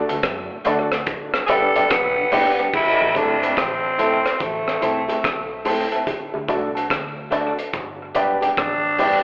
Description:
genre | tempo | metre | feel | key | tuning
roots reggae | 72 BPM | 4/4 | swing 64% on 16ths | A dorian | A4 = 440 Hz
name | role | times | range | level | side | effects
dark upright piano | stabs | 0.0-9.2 s | E4 to D5 | -24 LUFS | left 1 dB | none
electric guitar at the edge of break-up | accompaniment | 0.1-9.2 s | G3 to A4 | -25 LUFS | right 1 dB | tape echo, slapback echo
mellow tonewheel organ | accompaniment | 0.1-2.5 s | D2 to G4 | -32 LUFS | equal | none
vintage muted fingered electric bass | bass | 0.1-9.2 s | G1 to F#2 | -38 LUFS | equal | none
crunchy breakbeat drum kit | drums | 0.1-9.2 s | crash cymbal, hi-hat, kick drum, rim click | -24 LUFS | equal | tape echo
growling tenor saxophone | melody | 1.5-9.2 s | A3 to A4 | -21 LUFS | equal | tape echo, slapback echo
bongos | percussion | 2.3-9.2 s | none | -31 LUFS | equal | none
room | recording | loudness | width
moderate plate reverb, RT60 2.6 s | live gig heard through the venue's PA, club reverb, telephone sound | -18 LUFS | side -28 dB against mid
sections
0.0-2.7 A section; 2.7-9.2 B section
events
tenor saxophone solo 0.0-2.7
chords
0.0 D; 1.1 G; 2.7 Am; 6.1 D; 7.7 G

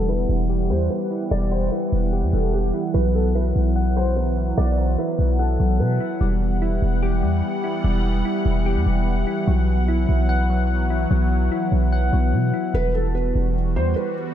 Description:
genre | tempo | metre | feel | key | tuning
hip hop | 147 BPM | 4/4 | half-time | E minor | A4 = 440 Hz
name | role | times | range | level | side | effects
felt-muted upright piano | melody | 0.0-6.2, 12.7-14.1 s | G4 to D5 | -27 LUFS | equal | analog chorus, ping-pong delay
soft electric-piano-like synth keys | accompaniment | 0.0-12.8 s | F#3 to F#5 | -25 LUFS | left 4 dB | chorus
sweeping resonant pad | sustained chords | 0.0-14.3 s | E3 to F#5 | -27 LUFS | right 4 dB | chorus
warm 808-style bass | bass | 0.0-14.0 s | E1 to B2 | -20 LUFS | equal | none
room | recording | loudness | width
light reverb | low-pass filter | -18 LUFS | side -10 dB against mid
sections
0.0-6.2 A section; 6.2-14.3 B section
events
filter sweep 0.0-6.2; break 12.7-14.3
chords
0.0 Emadd9; 2.9 Bsus4; 6.2 Emadd9; 9.5 Bsus4; 12.7 Emadd9

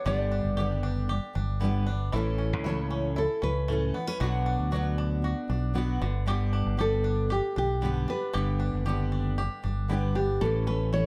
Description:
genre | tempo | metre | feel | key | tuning
pop | 116 BPM | 4/4 | straight | unclear | A4 = 443 Hz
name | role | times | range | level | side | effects
nylon-string guitar | melody | 0.0-11.1 s | G4 to D5 | -33 LUFS | equal | plate reverb
fingerpicked steel-string acoustic guitar | accompaniment | 0.0-11.1 s | G2 to A4 | -34 LUFS | equal | double-tracked
bluegrass banjo | arpeggios | 0.0-11.1 s | D3 to G4 | -40 LUFS | equal | plate reverb
fingered electric bass | bass | 0.1-11.1 s | F#1 to D2 | -31 LUFS | equal | none
room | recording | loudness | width
moderate studio reverb, RT60 0.6 s | none | -28 LUFS | mono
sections
0.0-10.4 A section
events
none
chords
0.0 G; 2.1 A; 4.2 Bm; 6.0 G; 10.4 A

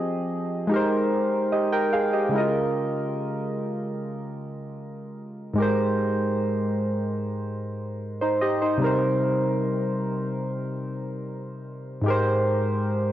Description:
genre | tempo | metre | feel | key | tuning
R&B | 74 BPM | 4/4 | straight | unclear | A4 = 441 Hz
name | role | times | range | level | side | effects
soft electric-piano-like synth keys | solo | 0.0-13.1 s | Ab2 to G5 | -23 LUFS | equal | chorus
room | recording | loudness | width
light reverb, digital ambience | dry, gritty hardware recording, cassette tape, nothing above 7.8 kHz | -23 LUFS | side -12 dB against mid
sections
0.0-2.3 A section; 2.3-13.1 B section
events
none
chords
0.0 Fm7; 0.7 Abmaj7; 2.3 Db69; 5.6 Abmaj9; 8.8 Cm7; 12.1 Abmaj9

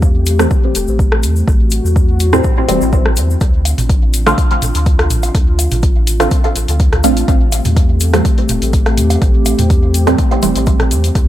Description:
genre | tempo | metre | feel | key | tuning
dub techno | 124 BPM | 4/4 | straight | unclear | A4 = 440 Hz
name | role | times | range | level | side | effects
dark analog pad | sustained chords | 0.0-11.3 s | A3 to G4 | -21 LUFS | left 2 dB | chorus, sidechain pumping
pure sine sub bass | bass | 0.0-11.3 s | E1 to E2 | -15 LUFS | equal | sidechain pumping
electronic kick drum | drums | 0.0-11.3 s | none | -13 LUFS | equal | overdrive
egg shaker | percussion | 0.0-11.3 s | none | -26 LUFS | left 5 dB | none
deep house drum kit | drums | 0.3-11.3 s | hi-hat, rim click | -20 LUFS | left 1 dB | overdrive, dub echo
filtered dub chord stab | stabs | 0.4-10.6 s | A2 to F4 | -17 LUFS | right 2 dB | phaser, sidechain pumping, dub echo
electronic woodblock and toms | percussion | 3.7-10.9 s | none | -24 LUFS | right 4 dB | sidechain pumping on perc, sidechain pumping on toms, dub echo
room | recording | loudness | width
light reverb, digital ambience | none | -10 LUFS | side -13 dB against mid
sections
0.0-11.3 A section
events
filter sweep on synth stab 0.0-11.3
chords
0.0 Am7; 3.4 Dm7; 7.3 Am7

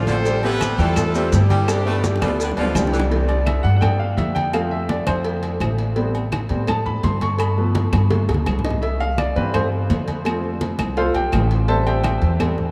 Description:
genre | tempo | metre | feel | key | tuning
latin, salsa | 168 BPM | 4/4 | straight | C major | A4 = 440 Hz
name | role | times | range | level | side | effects
clear horn section | melody | 0.0-2.9 s | D3 to C5 | -30 LUFS | equal | none
bright upright piano | accompaniment | 0.0-12.7 s | E3 to Db6 | -26 LUFS | equal | none
upright bass | bass | 0.0-12.7 s | A1 to A2 | -23 LUFS | equal | none
bright saxophone section | second line | 0.1-3.0 s | C3 to A3 | -33 LUFS | equal | none
congas | percussion | 0.1-12.7 s | none | -30 LUFS | equal | none
cowbell and bongos | percussion | 0.1-12.6 s | none | -31 LUFS | equal | none
maracas | percussion | 0.1-3.1 s | none | -38 LUFS | equal | none
agogo bells and timbales | percussion | 0.4-12.6 s | none | -33 LUFS | equal | none
claves | percussion | 0.6-12.6 s | none | -40 LUFS | equal | none
room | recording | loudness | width
moderate huge ambient reverb, RT60 8.1 s | in a vast, echoing space | -20 LUFS | mono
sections
0.0-3.1 A section; 3.1-12.7 B section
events
drum fill 1.7-3.1, 8.1-8.8; upright piano solo 3.1-12.7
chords
0.3 Am7; 1.7 G7; 3.1 C; 4.5 F; 6.0 Am7; 7.4 G7; 8.8 C; 10.3 F; 11.7 Am7

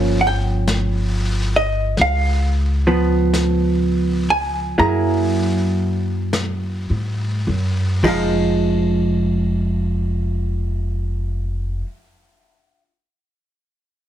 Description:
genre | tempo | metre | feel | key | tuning
jazz ballad | 34-49 BPM | 4/4 | swing 66% on 8ths | F minor | A4 = 443 Hz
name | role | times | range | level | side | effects
hollow-body jazz guitar | accompaniment | 0.0-11.9 s | F3 to Bb5 | -19 LUFS | right 1 dB | none
upright bass | bass | 0.0-11.8 s | F1 to Ab2 | -20 LUFS | equal | none
vintage brush drum kit | drums | 0.7-8.9 s | brushed snare drum, hi-hat, kick drum, ride cymbal, snare drum | -29 LUFS | left 3 dB | none
room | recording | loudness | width
light reverb | heavily compressed radio sound | -17 LUFS | side -11 dB against mid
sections
0.0-8.0 A section; 8.0-14.1 B section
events
slowing down 0.0-8.0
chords
0.0 Gm7b5; 2.0 Db7; 4.8 Gb9; 8.0 Fm7

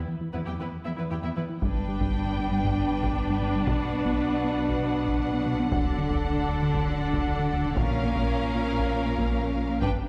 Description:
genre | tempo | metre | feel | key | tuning
cinematic, hybrid orchestral and electronic film score | 117 BPM | 4/4 | straight | unclear | A4 = 440 Hz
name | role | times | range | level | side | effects
smooth synth bass | riff | 0.0-10.0 s | D2 to B3 | -33 LUFS | equal | none
bright symphonic violin section | second line | 0.3-9.9 s | B3 to G5 | -39 LUFS | equal | none
rich symphonic viola section | accompaniment | 0.3-9.9 s | B3 to E4 | -36 LUFS | equal | none
rich symphonic cello section | bass | 0.3-9.9 s | E2 to D3 | -35 LUFS | equal | none
warm symphonic violin section | melody | 1.6-9.9 s | E#5 to G5 | -37 LUFS | equal | none
mellow French horn section | sustained chords | 1.6-10.1 s | E#3 to D4 | -34 LUFS | equal | none
warm sub bass | bass | 1.6-10.1 s | D1 to B1 | -36 LUFS | equal | none
solo taiko drums | drums | 1.6-10.1 s | none | -34 LUFS | equal | none
room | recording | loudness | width
wet scoring stage reverb, RT60 1.6 s | heard from further back in the room | -27 LUFS | mono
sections
0.0-1.6 A section; 1.6-10.1 B section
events
none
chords
0.0 E5; 1.6 G; 3.7 Bm; 5.7 D; 7.8 A#m

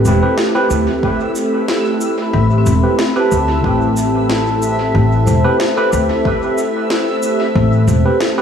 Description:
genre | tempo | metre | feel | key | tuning
ambient dub | 92 BPM | 4/4 | swing 54% on 16ths | A minor | A4 = 440 Hz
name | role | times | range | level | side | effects
warm analog pad | sustained chords | 0.0-8.4 s | A3 to A4 | -19 LUFS | right 2 dB | chorus
vibraphone with medium mallets | arpeggios | 0.0-8.4 s | C4 to B5 | -20 LUFS | left 2 dB | low-pass filter, tape echo
barky tine electric piano | stabs | 0.0-8.4 s | C4 to B4 | -20 LUFS | right 2 dB | dub echo
backwards swelling texture | texture | 1.1-8.4 s | E5 | -27 LUFS | left 1 dB | built-in reverb
upright bass | bass | 0.1-8.0 s | E1 to D2 | -14 LUFS | left 1 dB | tube saturation
electronic shaker and snare drum | drums | 0.1-8.3 s | none | -23 LUFS | equal | overdrive, dub echo
electronic kick drum | drums | 1.0-7.7 s | none | -21 LUFS | equal | overdrive
room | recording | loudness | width
light reverb | studio reverb | -12 LUFS | side -8 dB against mid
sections
0.0-8.4 A section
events
filter sweep on vibraphone 0.0-8.4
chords
0.0 Am9

